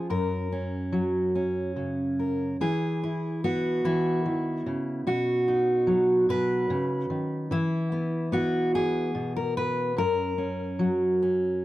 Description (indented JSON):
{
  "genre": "folk, solo fingerstyle acoustic guitar",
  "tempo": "48 BPM (dotted quarters)",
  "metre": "6/8",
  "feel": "rubato",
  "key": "unclear",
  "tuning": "A4 = 438 Hz",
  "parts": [
    { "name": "fingerpicked steel-string acoustic guitar", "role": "solo", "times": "0.0-11.6 s", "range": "F#2 to B4", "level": "-24 LUFS", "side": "equal", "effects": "none" }
  ],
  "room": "light reverb",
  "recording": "dry, close 1970s-style studio recording",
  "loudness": "-24 LUFS",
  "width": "side -15 dB against mid",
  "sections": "0.0-11.6 A section",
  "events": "none",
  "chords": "0.1 F#; 2.6 E; 5.1 B; 7.5 E5; 10.0 F#"
}